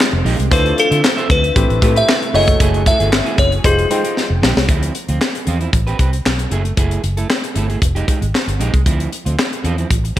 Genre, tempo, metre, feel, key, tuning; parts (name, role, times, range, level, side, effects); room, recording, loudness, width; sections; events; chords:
early-eighties boogie funk; 115 BPM; 4/4; straight; A4 = 440 Hz
delicate synth tine bell; melody; 0.0-4.4 s; Ab4 to E5; -17 LUFS; left 1 dB; chorus, slapback echo
warm concert grand piano; accompaniment; 0.0-4.3 s; Ab3 to G5; -22 LUFS; left 4 dB
soft string machine; sustained chords; 0.0-4.7 s; D3 to G5; -28 LUFS; equal
electric guitar at the edge of break-up; riff; 0.0-10.2 s; F3 to F5; -24 LUFS; right 5 dB; lush chorus
tight funk drum kit; drums; 0.0-10.2 s; handclaps, hi-hat, kick drum, snare drum; -17 LUFS; equal; gated reverb
vintage muted fingered electric bass; bass; 0.1-10.2 s; F1 to D3; -18 LUFS; equal
light reverb, studio reverb; -13 LUFS; side -13 dB against mid
0.0-4.7 A section; 4.7-10.2 B section
drum fill 4.2-4.7
0.0 Fm9; 0.5 Dm9; 1.6 Am9; 2.3 F#m9; 3.6 Fm9; 4.7 Dm9; 5.7 Am9; 6.5 F#m9; 7.8 Fm9; 8.9 Dm9